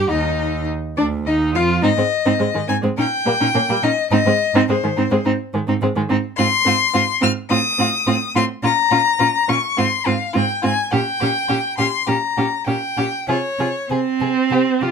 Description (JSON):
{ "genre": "quick classical-period movement for string quartet", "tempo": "105 BPM", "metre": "4/4", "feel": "rubato", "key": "F minor from 6.4 s", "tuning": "A4 = 440 Hz", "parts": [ { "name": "rich violin", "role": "melody", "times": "0.0-14.9 s", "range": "C5 to F6", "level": "-19 LUFS", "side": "left 6 dB", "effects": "none" }, { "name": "warm violin", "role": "second line", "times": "0.0-14.9 s", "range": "Ab3 to Ab4", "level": "-23 LUFS", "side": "left 3 dB", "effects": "none" }, { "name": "rich viola", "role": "accompaniment", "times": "0.0-14.9 s", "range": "Eb3 to G4", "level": "-21 LUFS", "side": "right 4 dB", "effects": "none" }, { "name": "rich cello", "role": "bass", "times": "0.0-14.9 s", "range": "D2 to C3", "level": "-23 LUFS", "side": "right 5 dB", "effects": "none" } ], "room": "light reverb", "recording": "minimal, uncompressed stereo recording", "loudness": "-16 LUFS", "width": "side -6 dB against mid", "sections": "0.0-14.9 A section", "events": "none", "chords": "0.0 Ebmaj7sus2; 1.8 Ab5; 3.0 Eb7/Bb; 4.1 Ab; 6.4 Fm/Ab; 7.5 F7/A; 8.6 Bbm; 9.8 Fm/Ab; 10.9 Gdim/Bb; 13.3 Fm/C (rootless)" }